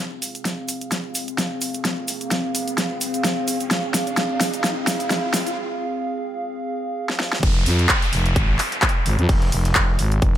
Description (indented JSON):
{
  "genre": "bass house",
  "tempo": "129 BPM",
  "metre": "4/4",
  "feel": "swing 55% on 16ths",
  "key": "F minor",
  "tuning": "A4 = 440 Hz",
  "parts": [
    { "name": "dark analog pad", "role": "sustained chords", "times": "0.0-10.4 s", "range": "C4 to F5", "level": "-26 LUFS", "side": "equal", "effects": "chorus, vintage 12-bit sampler grit, sidechain pumping" },
    { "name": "riser and downlifter", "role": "sound effects", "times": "1.7-10.4 s", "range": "none", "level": "-30 LUFS", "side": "equal", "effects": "none" },
    { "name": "big-room dance drum kit", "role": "drums", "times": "0.2-10.3 s", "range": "crash cymbal, handclaps, hi-hat, snare drum", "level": "-23 LUFS", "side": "equal", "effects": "overdrive, small room ambience" },
    { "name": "cabasa", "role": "percussion", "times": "0.2-5.6 s", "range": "none", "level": "-31 LUFS", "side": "right 2 dB", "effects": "none" },
    { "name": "growling FM bass", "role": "bass", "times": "7.4-10.4 s", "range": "F1 to F2", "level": "-20 LUFS", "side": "equal", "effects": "sidechain pumping" },
    { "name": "crunchy breakbeat drum kit", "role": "drums", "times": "7.4-10.4 s", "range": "hi-hat, shaker, snare drum", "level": "-38 LUFS", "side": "equal", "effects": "none" },
    { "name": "electronic kick drum", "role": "drums", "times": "7.4-10.3 s", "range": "none", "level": "-20 LUFS", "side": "equal", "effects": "overdrive, small room ambience" }
  ],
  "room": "studio reverb",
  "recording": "high-pass filter",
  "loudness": "-19 LUFS",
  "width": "side -11 dB against mid",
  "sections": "0.0-7.4 A section; 7.4-10.4 B section",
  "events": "build-up 0.0-7.4; drum fill 0.0-5.6, 7.1-7.4; filter sweep 0.0-7.4; riser 1.7-5.6; break 5.6-7.4; drop 7.4-10.4",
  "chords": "0.0 Fm"
}